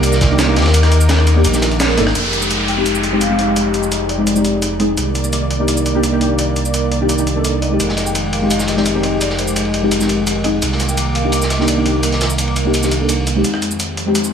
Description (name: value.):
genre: liquid drum and bass.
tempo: 170 BPM.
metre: 4/4.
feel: straight.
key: F dorian.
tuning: A4 = 441 Hz.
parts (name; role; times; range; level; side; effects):
vibraphone with medium mallets; melody; 0.0-4.8, 7.6-13.1 s; C5 to G5; -27 LUFS; left 1 dB; tape echo.
deep mellow chord stab; accompaniment; 0.0-14.3 s; Ab3 to A4; -19 LUFS; left 1 dB; chorus, cassette tape, tape echo.
lush unison pad; sustained chords; 0.0-14.3 s; F2 to D6; -21 LUFS; equal; chorus.
sub bass with octave; bass; 0.0-13.4 s; F1 to Eb2; -18 LUFS; right 1 dB; none.
breakbeat sampler-style drum kit; drums; 0.0-14.3 s; hi-hat, rim click, shaker, snare drum; -22 LUFS; right 1 dB; high-pass filter on hats, high-pass filter on perc, high-pass filter on snare, high-pass filter on room.
crunchy breakbeat drum kit; drums; 0.0-2.1, 7.8-13.2 s; ride cymbal, snare drum; -24 LUFS; equal; high-pass filter on cymbals, high-pass filter on snare, high-pass filter on room.
downlifter and riser; sound effects; 2.2-5.0, 13.9-14.3 s; none; -22 LUFS; equal; none.
room: moderate scoring stage reverb, RT60 1.5 s, studio reverb.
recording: none.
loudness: -13 LUFS.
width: side -7 dB against mid.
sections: 0.0-2.2 A section; 2.2-13.4 B section.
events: band accent 1.8; riser 13.9-14.3.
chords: 0.0 Cm9; 2.2 Fm9; 5.0 Cm9; 7.8 Fm9; 10.6 Cm9; 13.4 Fm9.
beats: 0.03 0.39 | 0.74 1.09 1.45 1.80 | 2.15 2.50 2.86 3.21 | 3.56 3.92 4.27 4.62 | 4.97 5.33 5.68 6.03 | 6.39 6.74 7.09 7.45 | 7.80 8.15 8.51 8.86 | 9.21 9.56 9.92 10.27 | 10.62 10.97 11.33 11.68 | 12.03 12.39 12.74 13.09 | 13.45 13.80 14.15.